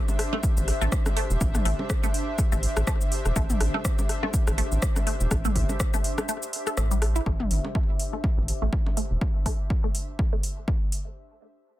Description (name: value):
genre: minimal techno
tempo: 123 BPM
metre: 4/4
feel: swing 56% on 16ths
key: A minor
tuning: A4 = 440 Hz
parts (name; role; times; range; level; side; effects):
- airy breathy pad; texture; 0.0-11.2 s; D4 to E5; -35 LUFS; left 1 dB; chorus, sidechain pumping
- house drum kit; drums; 0.1-11.0 s; hi-hat, rim click, shaker; -33 LUFS; equal; overdrive, soft clipping on snare
- organic electronic drum kit; percussion; 0.1-8.9 s; bongos, rim click, toms; -32 LUFS; left 1 dB; soft clipping on snare, ping-pong delay
- resonant blip pluck; riff; 0.3-10.7 s; G3 to A4; -33 LUFS; equal; phaser, sidechain pumping, ping-pong delay
- electronic kick drum; drums; 0.4-10.8 s; none; -26 LUFS; equal; overdrive
- rubbery square bass; bass; 0.6-9.2 s; E1 to A1; -25 LUFS; equal; sidechain pumping
room: little or no reverb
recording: dense, heavily limited modern master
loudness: -23 LUFS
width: side -15 dB against mid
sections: 0.0-7.3 A section; 7.3-11.2 B section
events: drop 0.0-7.3; kick drops out 6.3-7.3; fade-out on analog synth pad 7.3-11.2; filter sweep on synth arpeggio sound 7.3-11.2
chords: 0.0 Am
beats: 0.43 0.92 | 1.41 1.90 2.38 2.87 | 3.36 3.85 4.34 4.82 | 5.31 5.80 6.29 6.78 | 7.26 7.75 8.24 8.73 | 9.21 9.70 10.19 10.68